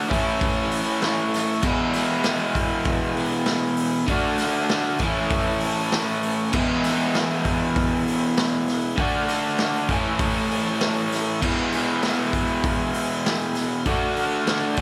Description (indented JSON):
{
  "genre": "garage rock duo or trio",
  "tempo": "98 BPM",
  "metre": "4/4",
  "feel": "straight",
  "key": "E mixolydian",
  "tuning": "A4 = 440 Hz",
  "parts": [
    { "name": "combo organ", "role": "sustained chords", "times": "0.0-14.8 s", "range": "E4 to C#6", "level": "-33 LUFS", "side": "equal", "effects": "none" },
    { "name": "crunchy overdriven guitar", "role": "riff", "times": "0.0-14.8 s", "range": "E2 to F#4", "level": "-25 LUFS", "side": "equal", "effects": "none" },
    { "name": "raw garage drum kit", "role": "drums", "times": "0.1-14.8 s", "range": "crash cymbal, hi-hat, kick drum, snare drum", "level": "-29 LUFS", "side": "equal", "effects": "none" }
  ],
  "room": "light reverb",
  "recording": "none",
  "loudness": "-23 LUFS",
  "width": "mono",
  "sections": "0.0-14.8 A section",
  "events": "transistor combo organ fill 0.7-1.6",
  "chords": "0.1 A; 1.6 E; 4.1 D; 5.0 A; 6.5 E; 9.0 D; 9.9 A; 11.4 E; 13.9 D",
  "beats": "0.42 1.03 | 1.65 2.26 2.87 3.48 | 4.09 4.71 5.32 5.93 | 6.54 7.15 7.77 8.38 | 8.99 9.60 10.21 10.82 | 11.43 12.04 12.65 13.26 | 13.87 14.48"
}